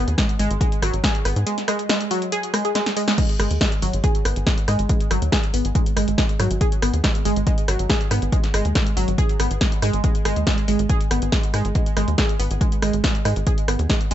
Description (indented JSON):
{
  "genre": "driving peak-time techno",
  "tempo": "140 BPM",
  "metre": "4/4",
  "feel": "straight",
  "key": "G# minor",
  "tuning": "A4 = 440 Hz",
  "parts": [
    { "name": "tight sequencer bass", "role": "bass", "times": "0.0-14.1 s", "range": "G#1 to G#2", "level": "-22 LUFS", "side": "equal", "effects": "tube saturation, sidechain pumping" },
    { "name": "punchy analog drum machine", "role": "drums", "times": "0.1-14.1 s", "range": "crash cymbal, hi-hat, rim click, snare drum", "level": "-25 LUFS", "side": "equal", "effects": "sidechain pumping on hats, sidechain pumping on cymbals" },
    { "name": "analog pluck", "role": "riff", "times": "0.2-14.1 s", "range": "F#3 to G#4", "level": "-24 LUFS", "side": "right 1 dB", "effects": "chorus, phaser, overdrive, sidechain pumping, dub echo" },
    { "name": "electronic kick drum", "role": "drums", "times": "0.2-14.0 s", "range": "none", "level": "-21 LUFS", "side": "equal", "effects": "none" }
  ],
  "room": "little or no reverb",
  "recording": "nothing above 8.0 kHz",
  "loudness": "-18 LUFS",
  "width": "side -11 dB against mid",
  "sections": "0.0-3.2 A section; 3.2-14.1 A section",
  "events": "drop 0.0-3.2, 3.2-14.1; drum fill 2.8-3.2; band accent 3.1",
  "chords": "none",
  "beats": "0.18 0.61 1.04 | 1.47 1.90 2.32 2.75 | 3.18 3.61 4.04 4.47 | 4.89 5.32 5.75 6.18 | 6.61 7.04 7.47 7.89 | 8.32 8.75 9.18 9.61 | 10.04 10.47 10.89 11.32 | 11.75 12.18 12.61 13.04 | 13.47 13.89"
}